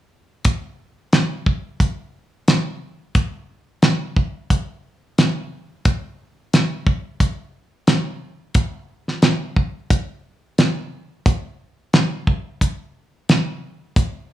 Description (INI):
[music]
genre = blues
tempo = 89 BPM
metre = 4/4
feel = swing 56% on 16ths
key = none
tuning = none
[part]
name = damped 70s drum kit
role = drums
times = 0.4-14.1 s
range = hi-hat, kick drum, snare drum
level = -16 LUFS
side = equal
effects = none
[sound]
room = wet studio reverb, RT60 0.8 s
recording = studio ambience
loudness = -18 LUFS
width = side -13 dB against mid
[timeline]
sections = 0.4-14.3 A section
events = none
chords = none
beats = | 0.45 1.12 1.80 2.47 | 3.15 3.82 4.50 5.17 | 5.85 6.53 7.20 7.88 | 8.55 9.23 9.90 10.58 | 11.25 11.93 12.61 13.28 | 13.96